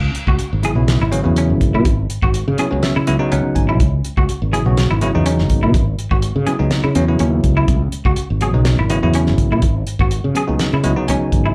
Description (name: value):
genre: electric jazz fusion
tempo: 124 BPM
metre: 4/4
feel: straight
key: C# minor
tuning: A4 = 439 Hz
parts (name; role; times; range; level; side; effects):
- fretless electric bass; bass; 0.0-11.5 s; G#1 to C#3; -19 LUFS; equal; subtle chorus
- damped 70s drum kit; drums; 0.1-11.4 s; hi-hat, kick drum, snare drum; -22 LUFS; equal; none
- clean electric guitar; stabs; 0.3-11.5 s; C#4 to G#4; -26 LUFS; equal; ensemble chorus
- bell-like tine electric piano; accompaniment; 0.6-11.5 s; C#3 to G#5; -21 LUFS; equal; none
room: light reverb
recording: live gig heard through the venue's PA, club ambience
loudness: -16 LUFS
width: mono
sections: 0.0-11.5 A section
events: tine electric piano fill 2.3-3.8, 10.6-11.5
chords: 0.0 C#m9